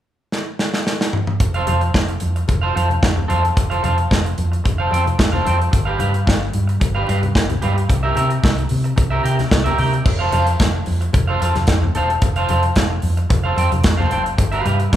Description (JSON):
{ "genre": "disco", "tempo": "111 BPM", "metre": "4/4", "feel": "straight", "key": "F major", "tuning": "A4 = 440 Hz", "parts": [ { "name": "modern studio drum kit", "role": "drums", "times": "0.3-15.0 s", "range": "crash cymbal, hi-hat, kick drum, snare drum, toms", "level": "-19 LUFS", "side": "equal", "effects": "none" }, { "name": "electric guitar at the edge of break-up", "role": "accompaniment", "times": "1.4-15.0 s", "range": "G4 to G5", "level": "-21 LUFS", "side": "right 1 dB", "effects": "spring reverb" }, { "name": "hollow-body short-scale fingered electric bass", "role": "bass", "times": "1.4-15.0 s", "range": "E1 to C3", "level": "-20 LUFS", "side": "equal", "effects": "none" }, { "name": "congas", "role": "percussion", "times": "1.4-14.8 s", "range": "none", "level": "-28 LUFS", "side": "left 3 dB", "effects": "none" } ], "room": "moderate large studio reverb, RT60 1.3 s", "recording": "band playing live in one room", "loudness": "-15 LUFS", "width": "side -12 dB against mid", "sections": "0.0-1.4 A section; 1.4-10.1 B section; 10.1-15.0 C section", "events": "drum fill 0.3-1.4", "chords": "0.0 N.C.; 1.4 F; 5.7 G7; 7.9 C7; 10.1 F; 14.4 G7", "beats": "0.32 0.86 | 1.40 1.94 2.48 3.03 | 3.57 4.11 4.65 5.19 | 5.73 6.27 6.81 7.35 | 7.89 8.44 8.97 9.52 | 10.06 10.60 11.14 11.68 | 12.22 12.76 13.30 13.84 | 14.38 14.93" }